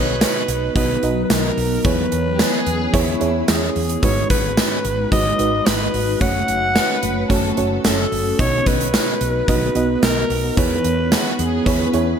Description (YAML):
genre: 1980s-style pop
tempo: 110 BPM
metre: 4/4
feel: straight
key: B major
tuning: A4 = 440 Hz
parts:
  - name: raspy alto saxophone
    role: melody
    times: 0.0-11.6 s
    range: G#4 to F#5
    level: -22 LUFS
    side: equal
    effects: slapback echo, tape echo
  - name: FM electric piano with tremolo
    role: accompaniment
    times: 0.0-12.2 s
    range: G#2 to D#5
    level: -23 LUFS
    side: right 3 dB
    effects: none
  - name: ethereal airy pad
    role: sustained chords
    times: 0.2-12.2 s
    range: E3 to B4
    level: -26 LUFS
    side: equal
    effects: ensemble chorus, built-in reverb, phaser
  - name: woody fretless electric bass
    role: bass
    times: 0.0-12.1 s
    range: F#1 to E2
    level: -24 LUFS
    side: equal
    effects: none
  - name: gated 80s drum kit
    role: drums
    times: 0.2-12.1 s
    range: hi-hat, kick drum, snare drum, tambourine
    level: -20 LUFS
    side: equal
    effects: none
  - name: warm studio violin section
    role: second line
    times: 2.3-3.3, 6.8-7.7, 11.1-12.1 s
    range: E4 to B4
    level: -29 LUFS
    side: left 3 dB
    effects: slapback echo, tape echo
room: moderate lush hall reverb, RT60 2.5 s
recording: big arena sound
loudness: -16 LUFS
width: side -7 dB against mid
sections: 0.0-12.2 A section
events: none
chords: 0.0 B; 1.8 E6; 4.0 G#m7; 6.2 F#m; 8.4 B; 10.6 E6